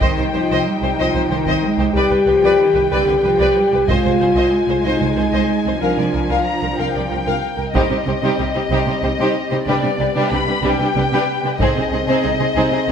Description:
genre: cinematic, epic orchestral film score.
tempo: 62 BPM (dotted quarters).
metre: 6/8.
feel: straight.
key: C minor.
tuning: A4 = 444 Hz.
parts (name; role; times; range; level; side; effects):
dark symphonic violin section; melody; 0.0-12.9 s; D5 to B5; -24 LUFS; left 5 dB; none.
rich symphonic violin section; second line; 0.0-12.9 s; G4 to F5; -23 LUFS; left 2 dB; none.
rich studio viola section; accompaniment; 0.0-12.9 s; G3 to C5; -23 LUFS; right 1 dB; none.
mellow French horn section; sustained chords; 0.0-12.9 s; B3 to Ab4; -19 LUFS; left 2 dB; none.
rich symphonic cello section; bass; 0.0-12.9 s; C3 to Ab3; -23 LUFS; right 4 dB; none.
rich symphonic double bass section; bass; 0.0-12.9 s; C2; -24 LUFS; right 4 dB; none.
taiko ensemble; drums; 0.0-12.8 s; none; -23 LUFS; equal; none.
room: wet scoring stage reverb, RT60 2.2 s.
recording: none.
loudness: -15 LUFS.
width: side -7 dB against mid.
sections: 0.0-7.7 A section; 7.7-12.9 B section.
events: none.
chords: 0.0 Cm; 1.9 G/C; 3.9 Ab/C; 5.8 Bb6/C; 7.7 Cm; 9.7 G/C; 11.6 Ab/C.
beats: | 0.02 0.98 | 1.95 2.91 | 3.88 4.84 | 5.81 6.77 | 7.74 8.70 | 9.67 10.63 | 11.60 12.56.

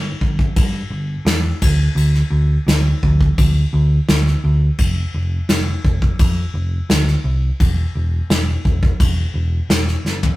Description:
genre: folk rock and heartland rock.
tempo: 85 BPM.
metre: 4/4.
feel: straight.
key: unclear.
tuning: A4 = 440 Hz.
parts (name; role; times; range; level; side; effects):
hollow-body short-scale picked electric bass; bass; 0.0-10.3 s; E1 to G2; -17 LUFS; equal; none.
soft brush drum kit; drums; 0.2-10.4 s; crash cymbal, kick drum, snare drum, toms; -18 LUFS; equal; none.
room: light reverb.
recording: rough rehearsal-room recording.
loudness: -15 LUFS.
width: side -18 dB against mid.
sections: 0.0-10.4 A section.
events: drum fill 10.1-10.4.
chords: none.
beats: 0.57 1.27 | 1.97 2.68 3.38 4.08 | 4.79 5.49 6.19 6.89 | 7.59 8.30 9.00 9.70.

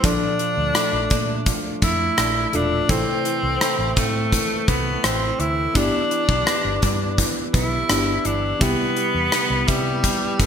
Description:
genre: 1980s-style pop.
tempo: 84 BPM.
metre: 4/4.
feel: straight.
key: G major.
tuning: A4 = 441 Hz.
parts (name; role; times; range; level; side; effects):
bright tenor saxophone; melody; 0.0-10.5 s; G3 to E4; -23 LUFS; equal; ping-pong delay.
mellow FM electric piano; accompaniment; 0.0-10.5 s; Bb2 to A4; -27 LUFS; left 2 dB; chorus.
direct-recorded clean electric guitar; riff; 0.0-10.5 s; E3 to E4; -29 LUFS; right 2 dB; wide subtle chorus, ping-pong delay.
vintage muted fingered electric bass; bass; 0.0-10.5 s; E1 to C3; -26 LUFS; equal; none.
gated 80s drum kit; drums; 0.0-10.5 s; hi-hat, kick drum, rim click; -22 LUFS; equal; gated reverb.
room: moderate plate reverb, RT60 2.1 s.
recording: bright 1980s-style digital production.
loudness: -18 LUFS.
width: side -8 dB against mid.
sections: 0.0-10.5 A section.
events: none.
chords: 0.0 Bbmaj7; 2.9 Am; 5.8 G6; 8.6 Cmaj7.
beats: | 0.04 0.75 1.47 2.18 | 2.90 3.61 4.32 5.04 | 5.75 6.47 7.18 7.90 | 8.61 9.32 10.04.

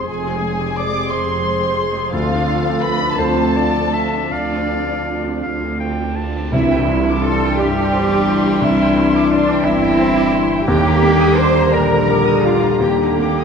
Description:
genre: cinematic, emotional film score for orchestra.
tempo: 53-59 BPM (dotted quarters).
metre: 6/8.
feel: rubato.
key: C major.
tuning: A4 = 444 Hz.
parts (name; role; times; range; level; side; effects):
muted studio violin section; melody; 0.0-13.4 s; D5 to D6; -27 LUFS; left 3 dB; none.
clear clarinet; second line; 0.0-13.4 s; G3 to A5; -23 LUFS; left 1 dB; none.
muted chamber violin section; second line; 0.0-13.4 s; D4 to Eb6; -26 LUFS; left 2 dB; none.
silver concert flute; second line; 0.0-5.4 s; D5 to D6; -27 LUFS; left 2 dB; none.
felt-muted upright piano; accompaniment; 0.0-13.4 s; C2 to D5; -22 LUFS; left 1 dB; none.
muted chamber viola section; accompaniment; 0.0-13.4 s; D3 to Ab4; -26 LUFS; right 3 dB; none.
dark French horn section; sustained chords; 0.0-13.4 s; D3 to D4; -22 LUFS; left 5 dB; none.
muted studio cello section; bass; 0.1-13.4 s; D2 to C5; -22 LUFS; right 2 dB; none.
muted studio double bass section; bass; 0.1-13.4 s; F1 to Eb2; -23 LUFS; right 4 dB; none.
cymbal swell and tam-tam; percussion; 2.1-9.3 s; none; -30 LUFS; left 3 dB; none.
dark cor anglais; second line; 6.5-13.4 s; D4 to C5; -23 LUFS; right 2 dB; none.
timpani; percussion; 6.5-7.6 s; C3; -26 LUFS; left 1 dB; none.
room: wet concert hall reverb, RT60 1.9 s.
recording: minimal, uncompressed stereo recording.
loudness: -14 LUFS.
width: side -6 dB against mid.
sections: 0.0-6.5 A section; 6.5-13.4 B section.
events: band accent 6.5-7.2.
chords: 0.0 Fmadd9; 2.1 Dm7; 6.5 Cadd9; 10.7 Ebmaj7.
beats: | 0.08 1.11 | 2.13 3.18 | 4.30 5.42 | 6.53 7.59 | 8.62 9.64 | 10.66 11.71 | 12.80.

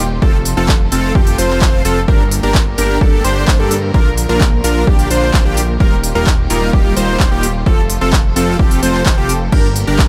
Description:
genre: EDM, festival progressive house.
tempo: 129 BPM.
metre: 4/4.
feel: straight.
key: unclear.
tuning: A4 = 441 Hz.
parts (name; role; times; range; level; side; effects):
rich studio string section; sustained chords; 0.0-10.1 s; C3 to Bb4; -26 LUFS; equal; sidechain pumping.
unison lead; arpeggios; 0.0-10.0 s; G4 to C5; -23 LUFS; equal; sidechain pumping, delay.
dense compressed supersaw; riff; 0.0-10.0 s; G3 to C5; -22 LUFS; equal; sidechain pumping, delay.
fat analog bass; bass; 0.0-10.1 s; Eb1 to G2; -21 LUFS; equal; sidechain pumping.
electronic kick drum; drums; 0.2-10.1 s; none; -15 LUFS; equal; none.
big-room dance drum kit; drums; 0.5-10.1 s; crash cymbal, handclaps, hi-hat; -22 LUFS; equal; none.
room: digital ambience.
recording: none.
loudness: -13 LUFS.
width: mono.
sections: 0.0-10.1 A section.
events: none.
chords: 0.2 F; 2.1 Gm; 3.9 Bb; 5.8 Ebadd9; 7.7 F; 9.5 Gm.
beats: | 0.22 0.69 1.15 1.62 | 2.08 2.55 3.01 3.48 | 3.94 4.41 4.87 5.34 | 5.80 6.27 6.73 7.20 | 7.66 8.13 8.59 9.06 | 9.52 9.99.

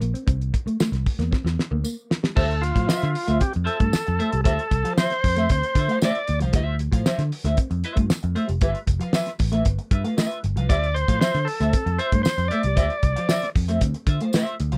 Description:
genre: funk.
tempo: 115 BPM.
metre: 4/4.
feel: straight.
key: D dorian.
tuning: A4 = 442 Hz.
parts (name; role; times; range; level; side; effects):
mellow electric guitar; riff; 0.0-14.8 s; F3 to C4; -31 LUFS; equal; spring reverb.
picked electric bass; bass; 0.0-14.8 s; F1 to D3; -26 LUFS; equal; tube saturation.
cloth-damped thuddy drum kit; drums; 0.0-14.8 s; crash cymbal, hi-hat, kick drum, snare drum; -25 LUFS; equal; none.
tambourine; percussion; 0.8-14.5 s; none; -39 LUFS; equal; none.
overdriven tonewheel organ; melody; 2.4-6.4, 10.7-13.5 s; F4 to D5; -28 LUFS; equal; none.
clean electric guitar; accompaniment; 2.4-14.8 s; F4 to F5; -31 LUFS; equal; wah.
room: light reverb.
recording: dry, close 1970s-style studio recording.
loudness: -22 LUFS.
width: mono.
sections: 0.0-2.4 A section; 2.4-14.8 B section.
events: break 0.0-2.4; drum fill 1.3-2.4.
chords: 0.0 C13; 2.4 Dm9; 8.6 G13; 10.7 Dm9.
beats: | 0.28 0.80 1.32 1.85 | 2.37 2.89 3.41 3.94 | 4.46 4.98 5.50 6.02 | 6.54 7.06 7.58 8.10 | 8.62 9.14 9.66 10.18 | 10.70 11.22 11.73 12.26 | 12.77 13.29 13.81 14.33.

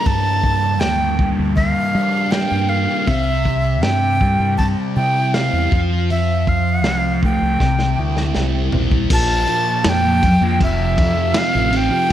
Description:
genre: psychedelic rock.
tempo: 80 BPM.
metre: 4/4.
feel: straight.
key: unclear.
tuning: A4 = 440 Hz.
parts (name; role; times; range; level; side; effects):
breathy bright jazz flute; melody; 0.0-12.1 s; E5 to A5; -20 LUFS; right 1 dB; tape echo.
thick fuzz guitar; riff; 0.0-12.1 s; F2 to E4; -20 LUFS; equal; distortion, phaser.
fingered electric bass; bass; 0.1-11.9 s; F1 to G3; -20 LUFS; equal; none.
crunchy breakbeat drum kit; drums; 0.1-12.1 s; crash cymbal, hi-hat, kick drum, snare drum, toms; -21 LUFS; equal; none.
room: moderate plate reverb, RT60 1.7 s.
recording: dreamy mix soaked in reverb.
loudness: -15 LUFS.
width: side -11 dB against mid.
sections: 0.0-9.1 A section; 9.1-12.1 B section.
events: drum fill 7.6-9.1.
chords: 0.0 Gm; 3.1 C; 5.7 F; 7.6 C; 9.1 Bb5; 10.6 Fmaj7.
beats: | 0.07 0.82 1.57 2.33 | 3.08 3.83 4.59 5.34 | 6.10 6.85 7.60 8.36 | 9.11 9.86 10.61 11.36 | 12.11.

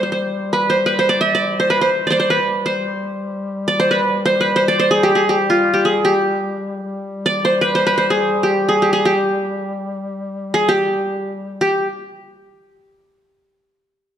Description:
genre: Turkish makam ensemble.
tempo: free time.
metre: none.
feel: none.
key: G makam hicaz.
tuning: A4 = 440 Hz.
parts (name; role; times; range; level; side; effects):
qanun; melody; 0.0-11.9 s; F4 to E5-40c; -15 LUFS; equal; none.
mellow duduk; drone; 0.0-11.7 s; G3; -26 LUFS; left 2 dB; none.
room: moderate recital hall reverb, RT60 1.6 s.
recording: none.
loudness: -15 LUFS.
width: side -9 dB against mid.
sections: 0.0-11.6 A section; 11.6-14.0 B section.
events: none.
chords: none.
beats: free time.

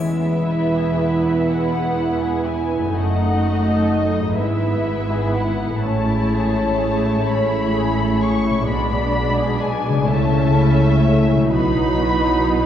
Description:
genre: classical, slow romantic movement for symphony orchestra.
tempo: 42 BPM (dotted quarters).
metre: 6/8.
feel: rubato.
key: E major.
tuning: A4 = 439 Hz.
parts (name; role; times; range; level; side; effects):
muted studio violin section; melody; 0.0-12.7 s; D#5 to C#6; -26 LUFS; left 2 dB; none.
muted studio violin section; second line; 0.0-12.7 s; G#3 to E5; -26 LUFS; left 3 dB; none.
muted studio viola section; accompaniment; 0.0-12.7 s; F#3 to E4; -24 LUFS; right 2 dB; none.
dark French horn section; sustained chords; 0.0-12.7 s; F#3 to E4; -24 LUFS; right 2 dB; none.
concert harp; arpeggios; 0.0-12.7 s; F#2 to E5; -24 LUFS; left 3 dB; none.
muted studio cello section; bass; 0.0-12.7 s; E2 to C#3; -24 LUFS; right 2 dB; none.
muted studio double bass section; bass; 0.0-12.7 s; E1 to C#2; -26 LUFS; right 1 dB; none.
room: wet scoring stage reverb, RT60 1.6 s.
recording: heard from further back in the room.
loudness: -16 LUFS.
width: side -10 dB against mid.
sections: 0.0-12.7 A section.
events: none.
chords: 0.0 E; 2.9 D#dim/F#; 4.4 E/G#; 5.8 Amaj7; 8.7 G#dim/B; 10.1 A/C#; 11.5 B.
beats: 1.47 | 2.94 4.38 | 5.84 7.27 | 8.68 10.08 | 11.51.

